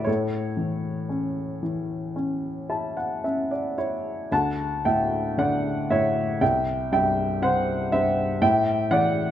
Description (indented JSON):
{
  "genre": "classical, lyrical solo piano",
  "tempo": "55-62 BPM",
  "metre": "4/4",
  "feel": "rubato",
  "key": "unclear",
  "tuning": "A4 = 435 Hz",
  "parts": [
    { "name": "warm upright piano", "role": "solo", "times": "0.0-9.3 s", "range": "C2 to A5", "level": "-22 LUFS", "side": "equal", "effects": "none" }
  ],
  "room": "moderate recital hall reverb, RT60 1.4 s",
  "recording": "none",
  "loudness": "-22 LUFS",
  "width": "side -11 dB against mid",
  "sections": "0.0-9.3 A section",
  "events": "upright piano fill 2.2-4.3",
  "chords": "0.1 A; 4.3 Dadd9; 6.4 C; 8.4 A7(no3)"
}